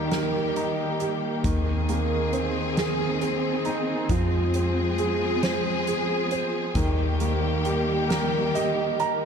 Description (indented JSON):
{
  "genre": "six-eight pop ballad",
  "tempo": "45 BPM (dotted quarters)",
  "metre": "6/8",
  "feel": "straight",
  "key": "Ab major",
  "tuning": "A4 = 441 Hz",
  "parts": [
    { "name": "clear grand piano", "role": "accompaniment", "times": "0.0-9.3 s", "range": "Eb3 to Bb5", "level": "-26 LUFS", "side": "right 3 dB", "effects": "analog chorus" },
    { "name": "warm studio string section", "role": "sustained chords", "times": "0.0-9.3 s", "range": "Eb3 to Ab4", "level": "-27 LUFS", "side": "left 3 dB", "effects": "none" },
    { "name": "vintage muted fingered electric bass", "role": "bass", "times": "0.0-9.3 s", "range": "Eb2 to F2", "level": "-28 LUFS", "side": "left 1 dB", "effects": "none" },
    { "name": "soft-mallet drum kit", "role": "drums", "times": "0.1-9.2 s", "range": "hi-hat, kick drum, snare drum", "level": "-31 LUFS", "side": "equal", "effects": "none" }
  ],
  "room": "moderate huge ambient reverb, RT60 3.7 s",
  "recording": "dreamy mix soaked in reverb",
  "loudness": "-22 LUFS",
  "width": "side -6 dB against mid",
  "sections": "0.0-9.3 A section",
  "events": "grand piano fill 8.1-9.3",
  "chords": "0.0 Eb; 1.4 Abadd9/Eb; 4.1 Fm; 6.8 Eb",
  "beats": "0.11 | 1.44 2.77 | 4.10 5.43 | 6.76 8.10"
}